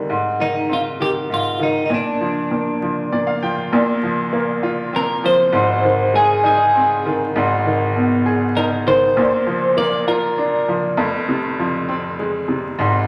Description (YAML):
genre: pop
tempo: 66 BPM (dotted quarters)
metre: 6/8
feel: straight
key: unclear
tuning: A4 = 440 Hz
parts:
  - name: bright upright piano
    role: accompaniment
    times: 0.0-13.1 s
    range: F1 to G5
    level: -20 LUFS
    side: equal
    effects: none
  - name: twelve-string electric guitar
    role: melody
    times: 0.4-10.7 s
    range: D4 to D5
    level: -20 LUFS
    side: equal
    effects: none
room: wet large studio reverb, RT60 1.2 s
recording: vinyl crackle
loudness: -18 LUFS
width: mono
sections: 0.0-3.7 A section; 3.7-13.1 B section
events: upright piano fill 2.8-3.7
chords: 0.1 Ab; 1.9 Bb; 3.7 Bbsus2; 5.5 Ab; 7.3 Abm; 9.2 Bbadd9; 11.0 Fm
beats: | 0.09 1.00 | 1.91 2.81 | 3.72 4.63 | 5.54 6.44 | 7.35 8.25 | 9.16 10.07 | 10.97 11.88 | 12.79